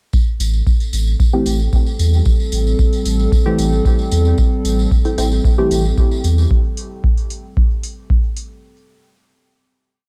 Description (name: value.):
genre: dub techno.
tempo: 113 BPM.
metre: 4/4.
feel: straight.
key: A minor.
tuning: A4 = 435 Hz.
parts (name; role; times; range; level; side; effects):
dark analog pad; sustained chords; 0.1-8.6 s; G3 to A4; -26 LUFS; equal; chorus, sidechain pumping.
electronic kick drum; drums; 0.1-8.2 s; none; -17 LUFS; equal; none.
tambourine; percussion; 0.1-6.5 s; none; -33 LUFS; equal; none.
warm sub bass; bass; 0.4-6.5 s; A1 to E2; -18 LUFS; equal; sidechain pumping.
electronic hi-hat; drums; 0.4-8.5 s; none; -34 LUFS; equal; none.
deep mellow chord stab; stabs; 1.3-5.8 s; E3 to G4; -23 LUFS; equal; chorus, phaser, sidechain pumping, dub echo.
filtered dub chord stab; riff; 5.1-5.3 s; E4 to G5; -30 LUFS; equal; phaser, vintage 12-bit sampler grit, sidechain pumping, dub echo.
room: digital ambience.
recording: dry, gritty hardware recording.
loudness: -16 LUFS.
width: mono.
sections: 0.1-8.6 groove.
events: none.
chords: 0.1 Am7.